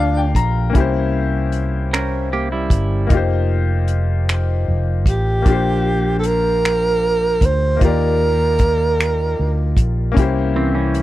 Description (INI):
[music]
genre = slow six-eight R&B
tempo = 51 BPM (dotted quarters)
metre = 6/8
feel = straight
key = Bb major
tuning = A4 = 440 Hz
[part]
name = breathy tenor saxophone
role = melody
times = 0.0-0.4, 5.1-9.7 s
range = D4 to C5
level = -18 LUFS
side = right 2 dB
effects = slapback echo
[part]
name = bright baby grand piano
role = accompaniment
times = 0.0-11.0 s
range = Bb3 to Bb5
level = -22 LUFS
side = left 7 dB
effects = none
[part]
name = mellow fretless electric bass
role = bass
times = 0.0-11.0 s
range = F1 to Eb2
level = -19 LUFS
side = equal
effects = wide subtle chorus
[part]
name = warm soul drum kit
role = drums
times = 0.3-11.0 s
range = finger snaps, hi-hat, kick drum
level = -16 LUFS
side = equal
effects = none
[part]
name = semi-hollow electric guitar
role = second line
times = 1.9-3.1, 10.6-11.0 s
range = E3 to Bb4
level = -22 LUFS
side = right 4 dB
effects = none
[sound]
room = studio ambience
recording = dry, close 1970s-style studio recording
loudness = -15 LUFS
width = side -15 dB against mid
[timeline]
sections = 0.0-11.0 A section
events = grand piano fill 0.0-0.8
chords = 0.0 Ebmaj7 (rootless); 0.8 C7b9; 3.1 F9sus4; 5.5 Bb69; 7.8 Ebmaj7; 10.2 C7b9